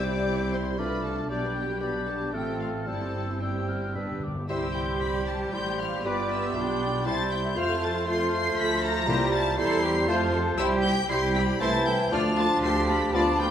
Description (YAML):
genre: quick classical-period movement for symphony orchestra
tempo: 118 BPM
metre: 3/4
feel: rubato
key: C major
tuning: A4 = 440 Hz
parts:
  - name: rich chamber violin section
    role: melody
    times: 0.0-13.5 s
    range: D5 to C7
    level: -34 LUFS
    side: left 3 dB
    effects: none
  - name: hollow concert flute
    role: second line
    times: 0.0-13.5 s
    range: G5 to G6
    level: -36 LUFS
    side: left 3 dB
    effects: none
  - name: rich chamber violin section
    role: second line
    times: 0.0-13.5 s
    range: D4 to C6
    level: -35 LUFS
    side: left 2 dB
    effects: none
  - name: warm clarinet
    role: second line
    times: 0.0-13.5 s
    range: C4 to F4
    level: -35 LUFS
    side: left 2 dB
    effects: none
  - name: warm oboe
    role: second line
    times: 0.0-13.5 s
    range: A4 to D5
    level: -35 LUFS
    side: equal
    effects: none
  - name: rich chamber viola section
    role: accompaniment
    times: 0.0-13.5 s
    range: F3 to B4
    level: -34 LUFS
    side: right 1 dB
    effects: none
  - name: warm bassoon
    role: accompaniment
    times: 0.0-13.5 s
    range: E3 to A3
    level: -32 LUFS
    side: right 1 dB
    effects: none
  - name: warm French horn section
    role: sustained chords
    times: 0.0-13.3 s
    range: G3 to G4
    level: -34 LUFS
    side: left 4 dB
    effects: none
  - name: rich chamber cello section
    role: bass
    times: 0.0-13.5 s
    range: G2 to B4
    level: -33 LUFS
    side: right 2 dB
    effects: none
  - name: warm chamber double bass section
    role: bass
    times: 0.0-13.5 s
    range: G1 to F2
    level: -31 LUFS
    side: right 2 dB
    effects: none
  - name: timpani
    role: percussion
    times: 4.0-4.4, 9.1-9.8 s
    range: G2 to C3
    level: -36 LUFS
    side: left 1 dB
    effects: none
  - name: warm trumpet section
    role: stabs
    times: 4.5-13.3 s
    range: B4 to D5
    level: -36 LUFS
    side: equal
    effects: none
room: wet recital hall reverb, RT60 1.5 s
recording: none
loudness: -24 LUFS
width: side -9 dB against mid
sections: 0.0-4.5 A section; 4.5-13.5 B section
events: timpani fill 4.0-4.5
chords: 0.0 C; 0.8 Dm7/C; 1.3 G/B; 2.3 F/A; 2.9 C/G; 4.0 G; 4.5 C; 6.1 G7; 7.1 C; 7.6 F; 9.1 C7; 10.1 F; 10.6 C; 11.6 Am/C; 12.1 Dm